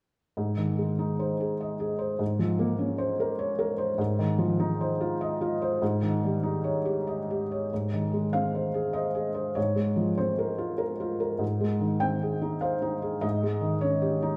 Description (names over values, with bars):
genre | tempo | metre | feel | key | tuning
neoclassical minimalist piano | 98 BPM | 3/4 | rubato | Ab major | A4 = 441 Hz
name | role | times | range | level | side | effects
felt-muted upright piano | solo | 0.4-14.4 s | Ab2 to G5 | -28 LUFS | equal | none
room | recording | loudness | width
wet recital hall reverb, RT60 1.8 s | recorded in a church or concert hall | -28 LUFS | mono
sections
0.4-7.7 A section; 7.7-14.4 B section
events
none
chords
0.4 Ab; 2.2 Bbmadd9/Ab; 4.0 Fm7/Ab; 5.8 Eb7/Ab; 7.7 Ab; 9.6 Bbmadd9/Ab; 11.4 Fm7/Ab; 13.2 Eb7/Ab